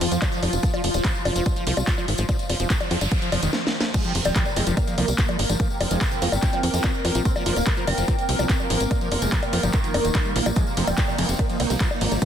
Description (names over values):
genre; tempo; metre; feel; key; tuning
psychedelic trance; 145 BPM; 4/4; straight; F minor; A4 = 440 Hz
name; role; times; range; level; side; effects
pulsing gated texture; sustained chords; 0.0-12.2 s; F3 to Bb4; -30 LUFS; equal; chorus, built-in reverb, sidechain pumping
liquid acid bass; riff; 0.0-12.2 s; Eb3 to F4; -30 LUFS; equal; phaser, auto-pan, sidechain pumping, ping-pong delay
tight sequencer bass; bass; 0.0-12.2 s; Eb1 to F2; -24 LUFS; equal; none
techno drum kit; drums; 0.0-12.2 s; bongos, crash cymbal, handclaps, hi-hat, ride cymbal, snare drum; -27 LUFS; left 1 dB; none
tambourine; percussion; 0.1-12.2 s; none; -36 LUFS; left 4 dB; none
electronic kick drum; drums; 0.2-12.2 s; none; -24 LUFS; equal; none
noise sweep; sound effects; 2.8-3.9 s; none; -34 LUFS; equal; none
oud; melody; 3.9-12.2 s; C3 to C4; -29 LUFS; right 2 dB; phaser, sidechain pumping, digital delay
vowel-sweep wobble bass; second line; 4.6-6.4, 11.2-12.2 s; Ab3 to C4; -39 LUFS; right 3 dB; none
room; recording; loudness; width
light reverb, digital ambience; dense, heavily limited modern master; -20 LUFS; side -9 dB against mid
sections
0.0-3.9 A section; 3.9-12.2 B section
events
noise sweep 2.8-3.9; drum fill 3.5-3.9; drop 3.9-12.2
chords
0.0 F5